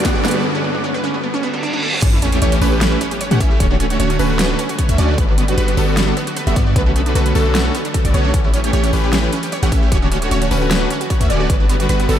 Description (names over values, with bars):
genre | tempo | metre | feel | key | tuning
future bass | 152 BPM | 4/4 | half-time | D major | A4 = 444 Hz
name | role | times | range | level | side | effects
wide unison pluck | arpeggios | 0.0-12.2 s | B3 to D5 | -24 LUFS | right 2 dB | vintage 12-bit sampler grit, sidechain pumping, diffuse ambient delay
big bright polysynth | riff | 0.0-12.2 s | D3 to F#5 | -19 LUFS | right 1 dB | sidechain pumping, diffuse ambient delay
big-room dance drum kit | drums | 0.0-12.2 s | crash cymbal, hi-hat, snare drum | -24 LUFS | equal | overdrive, small room ambience
electronic kick drum | drums | 0.0-11.6 s | none | -17 LUFS | equal | overdrive, small room ambience
riser, reverse cymbal and sub drop | sound effects | 0.0-3.6 s | none | -26 LUFS | right 1 dB | none
wide unison pluck | arpeggios | 2.0-12.2 s | A4 to F#5 | -28 LUFS | equal | sidechain pumping, diffuse ambient delay
warm 808-style bass | bass | 2.0-12.2 s | D1 to A2 | -18 LUFS | equal | sidechain pumping
room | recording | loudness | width
moderate huge ambient reverb, RT60 7.7 s | dreamy mix soaked in reverb | -14 LUFS | side -10 dB against mid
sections
0.0-2.0 A section; 2.0-12.2 B section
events
build-up 0.0-2.0; drum fill 0.0-0.4; riser 0.0-0.4; break 0.4-2.0; reverse cymbal 1.4-2.0; drop 2.0-12.2; impact 2.0-3.6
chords
0.4 Bm9; 2.0 A7; 3.6 Dmaj7; 5.2 Gmaj7; 6.8 Bm9; 8.3 A7; 9.9 Dmaj7; 11.5 Gmaj7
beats
0.05 | 0.45 0.84 1.23 1.63 | 2.02 2.42 2.81 3.21 | 3.60 4.00 4.39 4.79 | 5.18 5.58 5.97 6.37 | 6.76 7.16 7.55 7.95 | 8.34 8.73 9.13 9.52 | 9.92 10.31 10.71 11.10 | 11.50 11.89